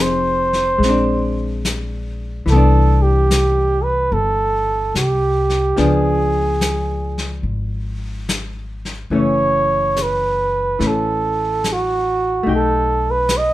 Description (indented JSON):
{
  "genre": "jazz ballad",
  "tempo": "72 BPM",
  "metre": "4/4",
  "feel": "swing 67% on 8ths",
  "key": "unclear",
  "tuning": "A4 = 440 Hz",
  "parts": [
    { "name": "breathy flugelhorn", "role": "melody", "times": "0.0-13.5 s", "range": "F#4 to D#5", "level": "-18 LUFS", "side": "right 2 dB", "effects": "none" },
    { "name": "vintage hollow-body jazz guitar", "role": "accompaniment", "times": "0.0-13.5 s", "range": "E3 to Ab4", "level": "-22 LUFS", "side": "left 2 dB", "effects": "none" },
    { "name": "upright bass", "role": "bass", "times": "0.0-13.5 s", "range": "F1 to C#2", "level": "-20 LUFS", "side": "left 1 dB", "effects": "none" },
    { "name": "vintage brush drum kit", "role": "drums", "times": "0.5-13.5 s", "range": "brushed snare drum, hi-hat, snare drum", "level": "-25 LUFS", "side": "left 2 dB", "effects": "none" }
  ],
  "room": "light reverb",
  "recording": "minimal, uncompressed stereo recording",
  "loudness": "-15 LUFS",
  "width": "side -15 dB against mid",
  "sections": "0.0-13.5 A section",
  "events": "none",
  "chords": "0.0 Fm7; 0.8 A#9; 2.5 Cmaj9; 5.8 C#7b9; 9.1 F#m7; 12.5 B7b13"
}